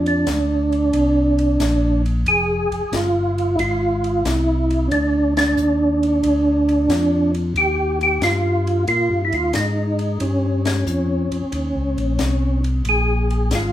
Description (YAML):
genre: soul jazz organ trio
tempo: 91 BPM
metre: 4/4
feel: swing 69% on 8ths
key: Bb mixolydian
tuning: A4 = 436 Hz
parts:
  - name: percussive tonewheel organ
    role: melody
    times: 0.0-13.7 s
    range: Db4 to Ab4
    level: -18 LUFS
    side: right 1 dB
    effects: slow rotary speaker, chorus vibrato
  - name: tonewheel organ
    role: bass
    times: 0.0-13.7 s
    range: F1 to Bb2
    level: -21 LUFS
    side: left 1 dB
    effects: none
  - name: compact cocktail drum kit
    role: drums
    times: 0.1-13.7 s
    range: hi-hat, ride cymbal, snare drum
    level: -30 LUFS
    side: left 3 dB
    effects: none
room: moderate large studio reverb, RT60 1.0 s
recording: band playing live in one room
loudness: -16 LUFS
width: side -12 dB against mid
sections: 0.0-13.7 A section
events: band accent 5.2-5.6, 10.5-10.9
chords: 0.0 Bb13; 7.6 Eb13; 12.9 Bb7(no3)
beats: 0.27 0.94 1.60 | 2.26 2.92 3.59 4.25 | 4.91 5.57 6.23 6.90 | 7.56 8.22 8.88 9.54 | 10.20 10.87 11.53 12.19 | 12.85 13.51